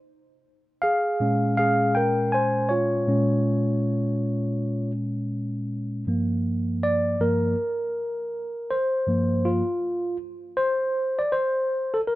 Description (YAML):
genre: hip hop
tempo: 80 BPM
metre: 4/4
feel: swing 63% on 16ths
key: unclear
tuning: A4 = 442 Hz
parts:
  - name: mellow tine electric piano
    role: solo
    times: 0.8-12.2 s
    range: G2 to Ab5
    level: -22 LUFS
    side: equal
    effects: none
room: little or no reverb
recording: rough home demo mix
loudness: -22 LUFS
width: side -17 dB against mid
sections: 0.0-6.1 A section; 6.1-12.2 B section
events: tine electric piano solo 0.0-6.1, 6.1-12.2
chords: 0.1 Bbm7; 6.1 Gm7